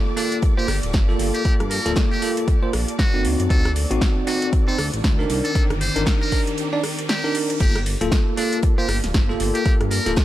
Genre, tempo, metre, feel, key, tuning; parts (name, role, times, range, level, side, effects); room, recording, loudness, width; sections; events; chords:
deep house; 117 BPM; 4/4; swing 59% on 16ths; G minor; A4 = 435 Hz
soft string machine; sustained chords; 0.0-10.2 s; Eb3 to D5; -32 LUFS; equal; phaser, ensemble chorus, sidechain pumping
bell-like tine electric piano; stabs; 0.0-10.2 s; Bb3 to D5; -24 LUFS; moving between left 3 dB and right 4 dB; auto-pan, sidechain pumping, tape echo
deep dark ambient pad; texture; 0.0-7.6 s; Eb3 to Bb5; -36 LUFS; equal
warm studio violin section; texture; 0.0-7.6 s; D5 to D6; -39 LUFS; left 2 dB; sidechain pumping
trumpet with metal mute; melody; 0.2-10.1 s; D4 to C5; -28 LUFS; equal; tape echo
deep house drum kit; drums; 0.2-10.2 s; crash cymbal, hi-hat, rim click, snare drum; -27 LUFS; equal; overdrive, studio ambience
loose indie drum kit; drums; 0.2-10.2 s; hi-hat, snare drum; -39 LUFS; right 3 dB
electronic kick drum; drums; 0.4-10.2 s; -19 LUFS; equal; overdrive, studio ambience
smooth synth bass; bass; 0.7-10.1 s; D1 to G2; -24 LUFS; equal; sidechain pumping
riser; sound effects; 4.6-7.6 s; -36 LUFS; right 1 dB
studio ambience; dry, gritty hardware recording; -18 LUFS; side -14 dB against mid
0.0-7.6 A section; 7.6-10.2 B section
riser 4.6-7.6; break 6.6-7.6; drop 7.6-10.2
0.0 Gm9; 3.2 D7b9; 5.3 Cm9; 7.6 Gm9